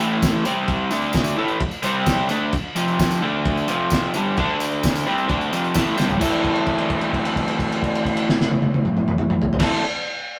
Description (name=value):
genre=garage rock duo or trio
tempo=130 BPM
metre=4/4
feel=straight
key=A minor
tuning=A4 = 441 Hz
part: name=crunchy overdriven guitar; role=riff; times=0.0-9.8 s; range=F2 to A4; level=-23 LUFS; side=equal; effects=none
part: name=cloth-damped thuddy drum kit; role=drums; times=0.2-9.7 s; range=crash cymbal, kick drum, snare drum, toms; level=-25 LUFS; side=equal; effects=none
part: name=tambourine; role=percussion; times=0.2-6.4 s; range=none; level=-38 LUFS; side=equal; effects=none
room=wet stone room reverb, RT60 1.1 s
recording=rough rehearsal-room recording, tube saturation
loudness=-21 LUFS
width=mono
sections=0.0-6.2 A section; 6.2-9.9 B section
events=drum fill 6.0; held note 6.2-9.6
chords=0.0 A5; 0.5 C5; 0.9 D5; 1.4 A5; 1.8 C5; 2.3 D5; 2.5 F5; 3.2 D5; 3.7 F5; 4.4 D5; 5.1 F5; 6.2 Am